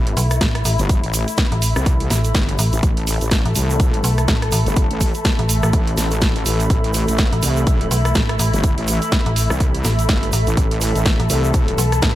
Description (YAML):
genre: bass house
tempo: 124 BPM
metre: 4/4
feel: swing 58% on 16ths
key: A minor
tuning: A4 = 441 Hz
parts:
  - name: rich studio string section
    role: sustained chords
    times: 0.0-12.2 s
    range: E3 to A4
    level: -26 LUFS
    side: left 2 dB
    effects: sidechain pumping, low-pass filter
  - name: wobble bass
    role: bass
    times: 0.0-11.8 s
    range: G1 to C2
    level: -21 LUFS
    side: equal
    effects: chorus, sidechain pumping
  - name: granular cloud pad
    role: texture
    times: 0.1-12.2 s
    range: A4 to B5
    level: -28 LUFS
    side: right 2 dB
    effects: built-in reverb, sidechain pumping
  - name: house drum kit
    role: drums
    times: 0.1-12.1 s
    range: hi-hat, rim click, snare drum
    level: -24 LUFS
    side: right 1 dB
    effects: none
  - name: metallic FM bass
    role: bass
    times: 0.2-12.2 s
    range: A1 to B1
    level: -18 LUFS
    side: equal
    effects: tube saturation, sidechain pumping
  - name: tube shaker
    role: percussion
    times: 0.2-12.1 s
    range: none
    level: -28 LUFS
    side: right 4 dB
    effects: none
  - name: electronic kick drum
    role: drums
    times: 0.4-12.1 s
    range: none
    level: -18 LUFS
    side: equal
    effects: none
room: little or no reverb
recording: none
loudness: -15 LUFS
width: side -14 dB against mid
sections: 0.0-12.2 A section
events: none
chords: 0.0 A5